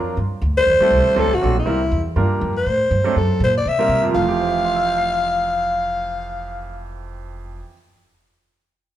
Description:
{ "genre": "jazz, small-group swing and bop", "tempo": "241 BPM", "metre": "4/4", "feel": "swing 57% on 8ths", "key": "F major", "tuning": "A4 = 440 Hz", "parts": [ { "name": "clear baby grand piano", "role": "accompaniment", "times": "0.0-7.9 s", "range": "F2 to C7", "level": "-24 LUFS", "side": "right 4 dB", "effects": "none" }, { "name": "upright bass", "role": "bass", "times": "0.0-7.6 s", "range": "F1 to C3", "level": "-23 LUFS", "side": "equal", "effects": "none" }, { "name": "growling alto saxophone", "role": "melody", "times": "0.6-6.9 s", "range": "E4 to F5", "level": "-18 LUFS", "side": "left 1 dB", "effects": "none" } ], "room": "wet large studio reverb, RT60 1.4 s", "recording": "minimal, uncompressed stereo recording", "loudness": "-16 LUFS", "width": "side -12 dB against mid", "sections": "0.2-4.2 A section; 4.2-6.2 B section", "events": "none", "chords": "0.2 G5; 0.7 Am7; 1.2 D7; 1.7 C7; 2.2 Gm7; 2.7 Am7; 3.2 D7b13/F# (rootless); 3.7 C7; 4.2 Fmaj9", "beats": "| 0.17 0.42 0.67 0.91 | 1.16 1.41 1.66 1.91 | 2.16 2.41 2.66 2.91 | 3.16 3.41 3.65 3.90 | 4.15 4.40 4.65 4.90 | 5.15 5.40 5.65 5.90" }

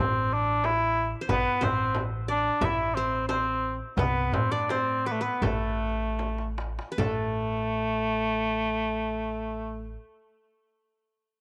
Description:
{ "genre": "Turkish makam ensemble", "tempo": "74-92 BPM", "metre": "4/4", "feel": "straight", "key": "A makam nihavent", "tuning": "A4 = 441 Hz", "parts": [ { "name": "mellow cor anglais", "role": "melody", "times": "0.0-9.9 s", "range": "A3 to E4", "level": "-30 LUFS", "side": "equal", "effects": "none" }, { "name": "upright bass", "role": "bass", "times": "0.0-9.9 s", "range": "A1 to A2", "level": "-35 LUFS", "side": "equal", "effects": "none" }, { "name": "darbuka", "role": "percussion", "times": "0.2-7.4 s", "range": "none", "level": "-38 LUFS", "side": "equal", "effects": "none" }, { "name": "frame drum", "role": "percussion", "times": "0.6-7.4 s", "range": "none", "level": "-37 LUFS", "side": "equal", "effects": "none" }, { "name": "qanun", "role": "second line", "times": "1.2-9.9 s", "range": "A4 to E5", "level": "-38 LUFS", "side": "equal", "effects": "none" } ], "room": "moderate spring reverb, RT60 2.3 s", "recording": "none", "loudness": "-28 LUFS", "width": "mono", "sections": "0.0-7.0 A section; 7.0-10.2 B section", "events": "slowing down 1.3-7.0; drum fill 6.2-7.0", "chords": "none", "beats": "0.64 | 1.30 1.95 2.62 3.29 | 3.98 4.69 5.42 6.19 | 6.98 7.80 8.61 9.43" }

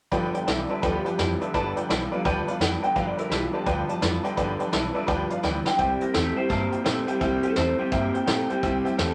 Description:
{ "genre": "rockabilly", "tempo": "169 BPM", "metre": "4/4", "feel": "swing 63% on 8ths", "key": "G mixolydian", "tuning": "A4 = 440 Hz", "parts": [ { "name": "honky-tonk upright piano", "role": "accompaniment", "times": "0.1-9.1 s", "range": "B4 to Bb5", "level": "-32 LUFS", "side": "equal", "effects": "none" }, { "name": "picked steel-string acoustic guitar", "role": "accompaniment", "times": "0.1-9.1 s", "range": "G2 to G4", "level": "-36 LUFS", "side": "equal", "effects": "none" }, { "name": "electric guitar through a small old amp", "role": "riff", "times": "0.1-9.1 s", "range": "G2 to Bb3", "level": "-30 LUFS", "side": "equal", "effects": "none" }, { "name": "upright bass", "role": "bass", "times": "0.1-9.1 s", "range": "G1 to Bb2", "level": "-35 LUFS", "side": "equal", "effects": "none" }, { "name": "vintage brush drum kit", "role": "drums", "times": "0.1-9.1 s", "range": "hi-hat, kick drum, snare drum", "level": "-32 LUFS", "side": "equal", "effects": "none" }, { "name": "electric guitar through a small old amp", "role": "melody", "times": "0.3-9.0 s", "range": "F4 to G5", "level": "-32 LUFS", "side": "equal", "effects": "phaser" } ], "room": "moderate studio reverb, RT60 0.5 s", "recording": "none", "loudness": "-25 LUFS", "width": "mono", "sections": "0.1-9.1 A section", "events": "drum fill 5.4-5.8", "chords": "0.1 G7; 5.8 C7", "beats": "| 0.12 0.47 0.83 1.19 | 1.54 1.89 2.25 2.60 | 2.96 3.31 3.67 4.02 | 4.37 4.73 5.08 5.44 | 5.79 6.14 6.50 6.85 | 7.21 7.56 7.92 8.27 | 8.63 8.98" }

